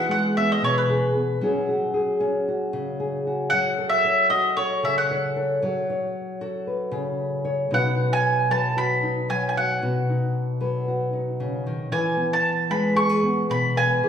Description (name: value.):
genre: folk.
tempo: 114 BPM.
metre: 4/4.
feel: straight.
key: B mixolydian.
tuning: A4 = 443 Hz.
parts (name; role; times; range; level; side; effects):
mandolin; melody; 0.0-14.1 s; B4 to C#6; -22 LUFS; right 1 dB; none.
nylon-string guitar; accompaniment; 0.0-14.1 s; B2 to C#5; -23 LUFS; left 1 dB; none.
room: wet recital hall reverb, RT60 1.4 s.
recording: recorded in a church or concert hall.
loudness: -21 LUFS.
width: side -8 dB against mid.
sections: 0.0-5.6 A section; 5.6-7.7 B section; 7.7-14.1 C section.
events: mandolin solo 0.0-5.6.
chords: 0.0 Eadd9; 1.4 F#madd9; 5.6 F#m; 7.7 B; 11.9 E.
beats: 0.36 0.88 | 1.41 1.94 2.46 2.99 | 3.52 4.04 4.57 5.09 | 5.62 6.14 6.67 7.20 | 7.72 8.24 8.77 9.29 | 9.82 10.35 10.87 11.40 | 11.92 12.45 12.97 13.50 | 14.02.